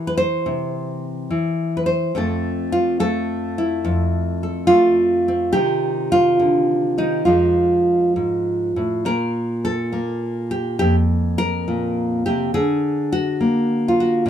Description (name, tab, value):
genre	solo jazz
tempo	70 BPM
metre	4/4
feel	swing 68% on 8ths, rubato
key	F major, Bb major from 9.1 s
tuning	A4 = 441 Hz
part	nylon-string guitar	solo	0.0-14.3 s	F2 to C5	-17 LUFS	equal	none
room	light reverb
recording	dark, warm production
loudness	-17 LUFS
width	side -9 dB against mid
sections	0.0-9.1 A section; 9.1-14.3 B section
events	none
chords	0.0 C; 2.1 Fmaj7; 5.5 Cm; 7.3 F7#9; 9.1 Bb5; 12.5 Daug